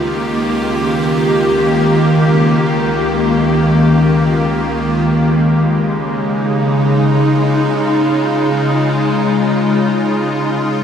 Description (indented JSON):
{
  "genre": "ambient",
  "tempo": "free time",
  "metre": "none",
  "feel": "none",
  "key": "Db lydian",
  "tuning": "A4 = 439 Hz",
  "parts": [
    { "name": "evolving wavetable pad", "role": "solo", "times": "0.0-10.8 s", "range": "Db2 to G4", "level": "-12 LUFS", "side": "equal", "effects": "ensemble chorus, built-in reverb, tape echo" }
  ],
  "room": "wet lush hall reverb, RT60 3.0 s",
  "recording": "dark, warm production",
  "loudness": "-12 LUFS",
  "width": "side -8 dB against mid",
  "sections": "0.0-5.1 A section; 5.1-10.8 B section",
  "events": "none",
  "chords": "0.0 Ebadd9/Db; 5.1 Db6",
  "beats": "free time"
}